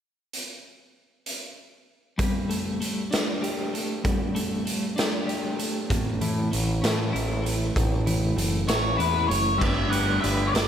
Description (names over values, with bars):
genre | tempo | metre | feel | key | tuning
quiet-loud alternative rock | 65 BPM (dotted quarters) | 6/8 | straight | unclear | A4 = 440 Hz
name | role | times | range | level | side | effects
raw garage drum kit | drums | 0.3-10.7 s | crash cymbal, hi-hat, kick drum, snare drum | -27 LUFS | right 1 dB | none
twelve-string electric guitar | arpeggios | 2.2-10.7 s | A2 to B4 | -28 LUFS | left 1 dB | tremolo
growling picked electric bass | bass | 5.9-10.7 s | F#1 to A2 | -26 LUFS | equal | overdrive
octave-fuzz lead guitar | melody | 8.7-10.7 s | B4 to F#5 | -26 LUFS | left 2 dB | distortion, slapback echo
room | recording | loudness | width
light reverb | none | -23 LUFS | side -9 dB against mid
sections
0.3-2.2 A section; 2.2-9.6 B section; 9.6-10.7 C section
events
none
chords
0.3 N.C.; 2.2 Gsus2; 5.9 A; 9.6 Gadd9